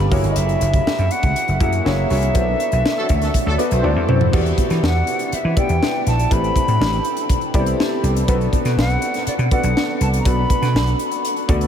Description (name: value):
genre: polished 1980s jazz-funk pop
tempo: 122 BPM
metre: 4/4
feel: straight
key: unclear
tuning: A4 = 440 Hz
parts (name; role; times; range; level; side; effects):
- silver concert flute; melody; 0.0-11.2 s; D5 to B5; -23 LUFS; equal; diffuse ambient delay
- clear grand piano; accompaniment; 0.0-11.7 s; A#3 to E5; -23 LUFS; left 1 dB; analog chorus
- vintage slap bass; bass; 0.0-11.7 s; F#1 to E3; -19 LUFS; equal; none
- crisp fusion drum kit; drums; 0.1-11.7 s; crash cymbal, hi-hat, kick drum, snare drum, toms; -21 LUFS; equal; none
- warm horn section; second line; 3.0-4.1 s; F#3 to C5; -31 LUFS; equal; none
room: moderate huge ambient reverb, RT60 9.0 s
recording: dreamy mix soaked in reverb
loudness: -16 LUFS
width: side -8 dB against mid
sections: 0.0-4.3 A section; 4.3-11.7 B section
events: band accent 2.4-4.3; drum fill 3.8-4.3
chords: 0.1 F#7; 2.4 Bm7; 3.8 D7; 4.3 Em7; 6.3 Am9; 8.3 Bm7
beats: | 0.37 0.86 1.36 1.85 | 2.35 2.85 3.34 3.83 | 4.33 4.83 5.32 5.81 | 6.31 6.80 7.29 7.79 | 8.28 8.78 9.27 9.76 | 10.26 10.75 11.24